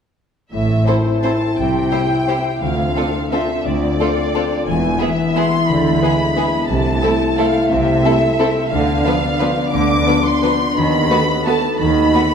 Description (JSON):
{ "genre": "classical, orchestral ballroom waltz", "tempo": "176 BPM", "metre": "3/4", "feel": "uneven beats, rubato", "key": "A minor", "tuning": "A4 = 440 Hz", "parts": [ { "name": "rich chamber violin section", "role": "melody", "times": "0.5-12.3 s", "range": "C5 to D6", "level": "-21 LUFS", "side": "left 1 dB", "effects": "none" }, { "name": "mellow French horn section", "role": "sustained chords", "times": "0.5-12.3 s", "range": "G#3 to F#4", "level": "-21 LUFS", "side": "left 2 dB", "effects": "none" }, { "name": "concert harp", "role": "arpeggios", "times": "0.5-12.3 s", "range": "A2 to E5", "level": "-23 LUFS", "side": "left 5 dB", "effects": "none" }, { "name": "rich symphonic double bass section", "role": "bass", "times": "0.5-12.1 s", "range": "E1 to D#2", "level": "-23 LUFS", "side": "right 3 dB", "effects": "none" }, { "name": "warm chamber cello section", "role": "bass", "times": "0.5-12.1 s", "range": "D2 to D#3", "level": "-22 LUFS", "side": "right 3 dB", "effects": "none" }, { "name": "clear chamber violin section", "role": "second line", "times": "0.9-12.2 s", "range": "D4 to C5", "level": "-25 LUFS", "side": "left 2 dB", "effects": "none" }, { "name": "warm chamber viola section", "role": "accompaniment", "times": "0.9-12.2 s", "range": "F3 to E4", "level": "-24 LUFS", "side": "right 2 dB", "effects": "none" } ], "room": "wet recital hall reverb, RT60 1.7 s", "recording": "none", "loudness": "-14 LUFS", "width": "side -7 dB against mid", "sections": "0.5-12.3 A section", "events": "none", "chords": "0.5 Am; 1.6 C; 2.6 Dm7; 4.7 E; 5.7 E7/D; 6.7 Am/C; 8.7 Bdim/D; 10.8 B7/D#" }